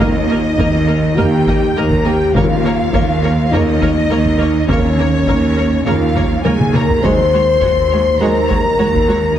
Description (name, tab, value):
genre	cinematic, epic orchestral film score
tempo	103 BPM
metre	4/4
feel	straight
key	unclear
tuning	A4 = 440 Hz
part	rich symphonic violin section	melody	0.0-9.2 s	Db5 to Eb5	-29 LUFS	left 4 dB	none
part	rich symphonic violin section	second line	0.0-9.4 s	Db5 to C6	-22 LUFS	left 1 dB	none
part	rich symphonic viola section	accompaniment	0.0-9.2 s	Ab3 to Bb4	-23 LUFS	right 1 dB	none
part	bright trombone section	sustained chords	0.0-8.4 s	Db3 to Bb3	-24 LUFS	right 3 dB	none
part	mellow French horn section	sustained chords	0.0-9.4 s	Db4 to C5	-17 LUFS	left 2 dB	none
part	rich symphonic cello section	bass	0.0-9.3 s	Eb2	-20 LUFS	right 2 dB	none
part	rich symphonic double bass section	bass	0.0-9.3 s	Eb2	-19 LUFS	right 2 dB	none
part	taiko ensemble	drums	0.0-9.4 s	none	-20 LUFS	equal	none
part	timpani	percussion	2.4-3.2 s	Eb3	-22 LUFS	left 6 dB	none
room	moderate scoring stage reverb, RT60 1.9 s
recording	heavily compressed radio sound, multiband compression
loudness	-12 LUFS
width	side -10 dB against mid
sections	0.0-9.4 A section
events	drum fill 6.4-7.0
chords	0.0 Eb; 2.4 Bbm/Eb; 7.0 Gbadd9/Eb